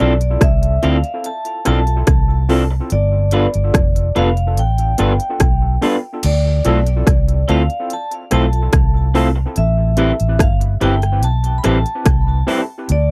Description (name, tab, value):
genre	lovers rock reggae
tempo	72 BPM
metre	4/4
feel	straight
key	unclear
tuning	A4 = 441 Hz
part	vibraphone with hard mallets	melody	0.0-13.1 s	D5 to B5	-25 LUFS	equal	tape echo
part	overdriven tine electric piano	accompaniment	0.0-12.6 s	B3 to B4	-24 LUFS	equal	fast tremolo, tape echo
part	electric guitar through a small old amp	stabs	0.0-12.6 s	F3 to B4	-22 LUFS	equal	none
part	vintage muted fingered electric bass	bass	0.0-13.1 s	F1 to D2	-18 LUFS	equal	none
part	techno drum kit	drums	0.2-13.1 s	crash cymbal, hi-hat, kick drum, rim click	-19 LUFS	equal	none
room	little or no reverb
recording	dry, close 1970s-style studio recording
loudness	-16 LUFS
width	mono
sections	0.0-6.2 A section; 6.2-13.1 A section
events	none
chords	0.0 Dm7; 2.9 G7; 6.2 Dm7; 9.6 Am7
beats	0.41 1.24 2.08 | 2.91 3.74 4.57 5.40 | 6.23 7.07 7.90 8.73 | 9.56 10.39 11.22 12.05 | 12.89